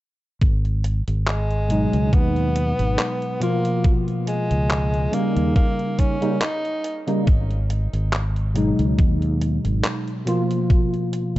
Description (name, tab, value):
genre	vaporwave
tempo	70 BPM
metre	4/4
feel	swing 55% on 16ths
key	G# dorian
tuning	A4 = 440 Hz
part	fretless electric bass	bass	0.4-11.4 s	G#1 to D#2	-21 LUFS	equal	none
part	detuned 8-bit digital drum machine	drums	0.4-11.4 s	handclaps, hi-hat	-28 LUFS	equal	vintage 12-bit sampler grit
part	electronic kick drum	drums	0.4-10.9 s	none	-18 LUFS	equal	vintage 12-bit sampler grit
part	warm tenor saxophone	melody	1.3-7.0 s	G#3 to D#4	-27 LUFS	equal	tape echo
part	tine electric piano	accompaniment	1.7-11.4 s	B2 to E#4	-23 LUFS	equal	ensemble chorus
room	digital ambience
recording	dark, warm production, nothing above 7.9 kHz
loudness	-19 LUFS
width	side -16 dB against mid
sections	0.4-11.4 A section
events	none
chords	0.4 G#m7; 3.8 C#6; 5.1 D#7; 7.3 G#m7; 10.7 C#6 (rootless)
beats	| 0.42 1.27 2.13 2.99 | 3.84 4.70 5.56 6.42 | 7.27 8.13 8.99 9.84 | 10.70